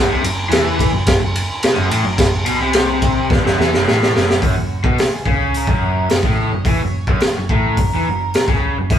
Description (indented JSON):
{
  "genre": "garage rock duo or trio",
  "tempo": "107 BPM",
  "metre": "4/4",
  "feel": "straight",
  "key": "F# mixolydian",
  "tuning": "A4 = 441 Hz",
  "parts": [
    { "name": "raw garage guitar", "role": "riff", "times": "0.0-9.0 s", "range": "E2 to E3", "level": "-20 LUFS", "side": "left 1 dB", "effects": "overdrive" },
    { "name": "hollow-body short-scale picked electric bass", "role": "bass", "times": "0.0-9.0 s", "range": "E1 to E2", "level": "-22 LUFS", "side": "right 1 dB", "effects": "tube saturation" },
    { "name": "raw garage drum kit", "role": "drums", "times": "0.2-9.0 s", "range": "hi-hat, kick drum, ride cymbal, snare drum", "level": "-16 LUFS", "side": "equal", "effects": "none" },
    { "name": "octave-fuzz lead guitar", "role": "melody", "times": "4.5-9.0 s", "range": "F#4 to D#5", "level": "-27 LUFS", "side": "right 1 dB", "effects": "distortion, slapback echo" }
  ],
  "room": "light reverb",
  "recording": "band playing live in one room",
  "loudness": "-14 LUFS",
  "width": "side -9 dB against mid",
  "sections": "0.0-4.4 A section; 4.4-9.0 B section",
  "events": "drum fill 3.3-4.4",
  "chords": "0.0 F#5; 4.4 F#"
}